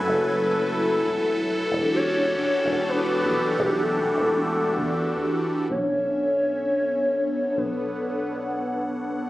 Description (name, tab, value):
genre	IDM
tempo	128 BPM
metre	4/4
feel	straight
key	B minor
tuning	A4 = 440 Hz
part	warbly nostalgic lead	melody	0.0-9.2 s	G4 to C#5	-25 LUFS	left 1 dB	analog chorus, ping-pong delay
part	phased analog pad	sustained chords	0.0-9.3 s	E3 to G#5	-25 LUFS	equal	phaser, chorus
part	deep acid bass	bass	0.1-9.3 s	E1 to E2	-32 LUFS	equal	none
room	light reverb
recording	recorded on a phone in the room, club reverb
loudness	-21 LUFS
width	side -16 dB against mid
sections	0.0-5.7 A section; 5.7-9.3 B section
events	none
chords	0.0 F#m11; 1.7 Em11; 5.7 Bm11